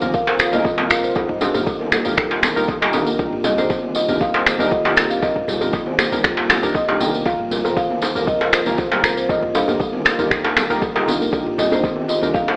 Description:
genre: afro house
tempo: 118 BPM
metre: 4/4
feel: straight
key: C minor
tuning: A4 = 441 Hz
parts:
  - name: marimba with medium mallets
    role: melody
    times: 0.0-12.6 s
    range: C5 to G5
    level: -26 LUFS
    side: equal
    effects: tape echo
  - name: warm analog pad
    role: sustained chords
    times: 0.0-12.6 s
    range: C3 to G4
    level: -33 LUFS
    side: equal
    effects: none
  - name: buzzing kalimba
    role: arpeggios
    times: 0.0-12.5 s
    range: G3 to F5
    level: -27 LUFS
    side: equal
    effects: sidechain pumping, tape echo
  - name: warm analog keys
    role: stabs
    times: 0.0-12.6 s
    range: Bb3 to Bb4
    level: -28 LUFS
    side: equal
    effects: chorus, sidechain pumping, tape echo
  - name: warm 808-style bass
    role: bass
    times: 0.0-12.6 s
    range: G1 to C2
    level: -39 LUFS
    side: equal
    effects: sidechain pumping
  - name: congas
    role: percussion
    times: 0.0-12.6 s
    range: none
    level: -30 LUFS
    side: equal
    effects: none
  - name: tambourine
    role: percussion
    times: 0.0-12.5 s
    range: none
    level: -33 LUFS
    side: equal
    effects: none
  - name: electronic kick drum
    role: drums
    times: 0.1-12.5 s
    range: none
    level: -28 LUFS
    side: equal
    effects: none
  - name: djembe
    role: percussion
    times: 0.1-12.6 s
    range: none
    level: -26 LUFS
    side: equal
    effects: none
  - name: afro-pop drum kit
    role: drums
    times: 0.4-11.6 s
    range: finger snaps, toms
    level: -21 LUFS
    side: equal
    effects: none
room: light reverb, small room reverb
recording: AM radio sound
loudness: -19 LUFS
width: mono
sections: 0.0-12.6 A section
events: none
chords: 0.0 Fsus4/C; 1.2 Ebadd9/C; 3.2 Cm7; 7.3 Fsus4/C; 9.3 Ebadd9/C; 11.3 Cm7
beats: 0.14 0.65 | 1.16 1.67 2.18 2.68 | 3.19 3.70 4.21 4.72 | 5.23 5.74 6.24 6.75 | 7.26 7.77 8.28 8.79 | 9.29 9.80 10.31 10.82 | 11.33 11.84 12.35

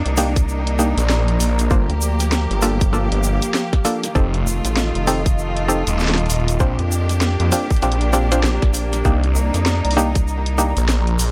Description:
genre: glitch hop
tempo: 98 BPM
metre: 4/4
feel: swing 61% on 16ths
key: C dorian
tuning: A4 = 440 Hz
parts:
  - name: bright studio string section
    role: sustained chords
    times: 0.0-11.3 s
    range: Eb3 to G4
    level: -28 LUFS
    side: equal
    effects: vintage 12-bit sampler grit, sidechain pumping
  - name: rubbery square bass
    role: bass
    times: 0.0-10.7 s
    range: F1 to F2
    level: -23 LUFS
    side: equal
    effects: none
  - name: warbly tape-like pad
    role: texture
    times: 0.3-11.3 s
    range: F4 to Bb5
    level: -31 LUFS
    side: equal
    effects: chorus, built-in reverb, sidechain pumping
  - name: drum and bass drum kit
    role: drums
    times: 0.1-11.3 s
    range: hi-hat, snare drum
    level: -26 LUFS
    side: equal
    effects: none
  - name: muted clav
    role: stabs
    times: 0.2-10.7 s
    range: Bb3 to C5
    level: -24 LUFS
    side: equal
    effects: sidechain pumping, tape echo
  - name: tube shaker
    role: percussion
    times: 0.2-11.3 s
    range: none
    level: -31 LUFS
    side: equal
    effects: none
  - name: electronic kick drum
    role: drums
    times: 0.4-10.3 s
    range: none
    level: -19 LUFS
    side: equal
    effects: none
  - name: phased detuned saw bass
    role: bass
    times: 1.0-11.3 s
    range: Eb1 to F2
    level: -21 LUFS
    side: equal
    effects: phaser, tube saturation
room: little or no reverb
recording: dry, gritty hardware recording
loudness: -18 LUFS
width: mono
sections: 0.0-11.3 A section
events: none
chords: 0.0 Cm9; 1.7 Gm7; 4.2 F7; 6.6 Bb6; 9.1 Cm9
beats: 0.48 1.09 | 1.71 2.32 2.93 3.54 | 4.16 4.77 5.38 5.99 | 6.60 7.22 7.83 8.44 | 9.05 9.66 10.28 10.89

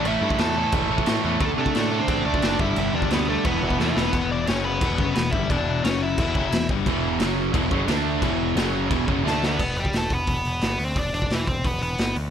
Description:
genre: punk rock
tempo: 176 BPM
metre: 4/4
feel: straight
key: E minor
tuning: A4 = 440 Hz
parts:
  - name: biting overdriven guitar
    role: melody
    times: 0.0-6.7, 9.3-12.1 s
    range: E3 to A5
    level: -27 LUFS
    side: equal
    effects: tape echo
  - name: distorted electric guitar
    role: riff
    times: 0.0-9.6 s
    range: E2 to D4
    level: -26 LUFS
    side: left 12 dB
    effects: distortion
  - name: distorted electric guitar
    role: riff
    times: 0.0-4.1, 6.9-9.6 s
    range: E2 to D4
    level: -26 LUFS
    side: right 16 dB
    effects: distortion
  - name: growling picked electric bass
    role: bass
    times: 0.0-12.3 s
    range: E1 to C3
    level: -28 LUFS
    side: equal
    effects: overdrive
  - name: raw garage drum kit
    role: drums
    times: 0.1-12.2 s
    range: crash cymbal, hi-hat, kick drum, snare drum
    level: -26 LUFS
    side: equal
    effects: none
room: light reverb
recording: none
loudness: -20 LUFS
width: side -8 dB against mid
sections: 0.0-4.1 A section; 4.1-9.6 B section; 9.6-12.3 C section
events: drum fill 3.8-4.1, 9.3-9.6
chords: 0.0 A5; 1.4 D5; 2.6 G; 3.5 E5; 4.5 F#5; 4.8 Em; 5.8 F#5; 6.2 Em; 7.2 F#5; 7.5 E5; 7.9 D5; 8.2 E5; 8.6 F#5; 8.9 E5; 9.3 D5; 9.6 E5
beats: | 0.04 0.39 0.73 1.07 | 1.41 1.75 2.09 2.43 | 2.77 3.11 3.45 3.79 | 4.13 4.47 4.82 5.16 | 5.50 5.84 6.18 6.52 | 6.87 7.21 7.55 7.89 | 8.23 8.57 8.92 9.26 | 9.60 9.95 10.29 10.63 | 10.97 11.32 11.66 12.00

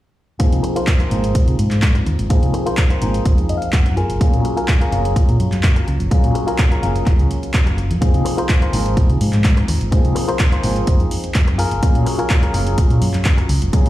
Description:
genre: filtered disco house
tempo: 126 BPM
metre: 4/4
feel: straight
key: Ab mixolydian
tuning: A4 = 440 Hz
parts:
  - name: warm concert grand piano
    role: accompaniment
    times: 0.4-13.9 s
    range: F3 to Ab4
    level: -23 LUFS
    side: equal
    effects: phaser, vintage 12-bit sampler grit, sidechain pumping, low-pass filter
  - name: hollow-body short-scale fingered electric bass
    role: bass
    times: 0.4-13.9 s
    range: Gb1 to C3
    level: -18 LUFS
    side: equal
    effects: sidechain pumping, low-pass filter
  - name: electronic kick drum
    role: drums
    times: 0.4-13.8 s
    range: none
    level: -15 LUFS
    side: equal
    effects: overdrive
  - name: punchy analog drum machine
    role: drums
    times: 0.4-13.9 s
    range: handclaps, hi-hat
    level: -26 LUFS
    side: equal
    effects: overdrive, sidechain pumping on hats
  - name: tambourine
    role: percussion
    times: 0.4-13.9 s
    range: none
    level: barely audible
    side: none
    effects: none
  - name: direct-recorded clean electric guitar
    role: riff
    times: 0.6-13.5 s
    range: F4 to Ab5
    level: -24 LUFS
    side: left 2 dB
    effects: sidechain pumping, low-pass filter
room: little or no reverb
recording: played on a big sound system in a bare room, large studio reverb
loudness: -14 LUFS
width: side -15 dB against mid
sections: 0.4-13.9 A section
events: filter sweep 0.4-13.9; clean electric guitar fill 3.3-4.2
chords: 0.4 Ab69; 4.0 Gbmaj9; 8.0 Ab69; 11.6 Gbmaj9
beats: | 0.40 0.88 1.35 1.83 | 2.30 2.78 3.26 3.73 | 4.21 4.68 5.16 5.64 | 6.11 6.59 7.07 7.54 | 8.02 8.49 8.97 9.45 | 9.92 10.40 10.88 11.35 | 11.83 12.30 12.78 13.26 | 13.73

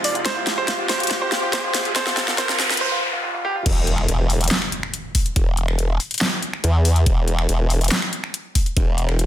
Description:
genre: heavy wobble dubstep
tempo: 141 BPM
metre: 4/4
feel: half-time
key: unclear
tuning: A4 = 440 Hz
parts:
  - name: bright baby grand piano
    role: melody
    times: 0.0-3.6 s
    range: F4 to D5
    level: -24 LUFS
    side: right 2 dB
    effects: digital delay
  - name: supersaw pad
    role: sustained chords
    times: 0.0-2.8 s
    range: C3 to G4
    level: -30 LUFS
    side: right 1 dB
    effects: sidechain pumping
  - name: dubstep drum kit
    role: drums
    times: 0.0-9.3 s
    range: crash cymbal, finger snaps, handclaps, hi-hat, snare drum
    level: -23 LUFS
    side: left 1 dB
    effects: overdrive, studio reverb
  - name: riser, noise sweep and impact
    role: sound effects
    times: 0.0-5.4 s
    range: none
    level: -27 LUFS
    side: equal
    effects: none
  - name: electronic kick drum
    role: drums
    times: 0.3-8.9 s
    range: none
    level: -20 LUFS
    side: equal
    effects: studio reverb
  - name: formant-sweep wobble bass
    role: bass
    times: 3.7-9.3 s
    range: E1 to E2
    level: -18 LUFS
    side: equal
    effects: chorus, overdrive
room: light reverb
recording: dense, heavily limited modern master, high-pass filter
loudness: -18 LUFS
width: side -12 dB against mid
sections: 0.0-3.7 A section; 3.7-9.3 B section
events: build-up 0.0-3.7; drum fill 0.0-2.8; riser 0.0-2.8; noise sweep 2.0-3.7; break 2.8-3.7; drop 3.7-9.3; impact 3.7-5.4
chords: 0.0 Fm; 3.7 N.C.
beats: | 0.26 0.68 1.11 1.53 | 1.96 2.38 2.81 3.23 | 3.66 4.08 4.51 4.94 | 5.36 5.79 6.21 6.64 | 7.06 7.49 7.92 8.34 | 8.77 9.19

